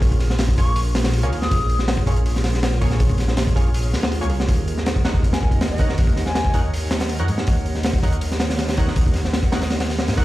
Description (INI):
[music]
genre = drum and bass, jungle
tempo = 161 BPM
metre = 4/4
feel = straight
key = unclear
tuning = A4 = 440 Hz
[part]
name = warbly tape-like pad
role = sustained chords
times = 0.0-10.2 s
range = F4 to Gb5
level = -32 LUFS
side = right 1 dB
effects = chorus, built-in reverb
[part]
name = orchestra-hit-like synth stab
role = stabs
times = 0.0-10.2 s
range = Bb3 to Gb5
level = -31 LUFS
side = right 1 dB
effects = built-in reverb, dub echo
[part]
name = dark detuned saw bass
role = bass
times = 0.0-10.2 s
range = Bb1 to Ab2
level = -21 LUFS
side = equal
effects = none
[part]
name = crunchy breakbeat drum kit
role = drums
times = 0.0-10.2 s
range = hi-hat, kick drum, snare drum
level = -20 LUFS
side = equal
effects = none
[part]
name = concert flute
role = melody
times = 0.6-1.8, 5.3-6.6 s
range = Eb5 to Eb6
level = -29 LUFS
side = left 2 dB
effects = dub echo
[sound]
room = small room ambience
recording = played on a big sound system in a bare room, large studio reverb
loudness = -17 LUFS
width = side -16 dB against mid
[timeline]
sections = 0.0-10.2 A section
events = none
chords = 0.0 Bbm7; 4.5 Ebm7